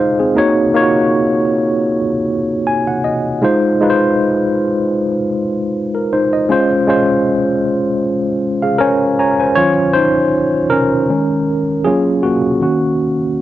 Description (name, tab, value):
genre	soul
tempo	78 BPM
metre	4/4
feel	swing 54% on 16ths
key	Eb dorian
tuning	A4 = 439 Hz
part	tine electric piano	solo	0.0-13.4 s	Eb3 to Bb5	-12 LUFS	equal	medium stereo tremolo
room	light reverb, digital ambience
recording	nothing above 7.7 kHz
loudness	-12 LUFS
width	side -13 dB against mid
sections	0.0-9.6 A section; 9.6-13.4 B section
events	tine electric piano fill 2.3-3.4, 8.4-9.6; tine electric piano solo 9.6-13.4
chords	0.4 Ebm7; 3.4 Fm7; 6.5 Dbmaj7; 9.6 Ebm9; 11.1 Bbm7/Eb; 11.9 Gbmaj7; 12.6 Ebm7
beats	| 0.36 1.13 1.90 2.67 | 3.43 4.20 4.97 5.73 | 6.50 7.26 8.03 8.80 | 9.56 10.32 11.09 11.85 | 12.62 13.38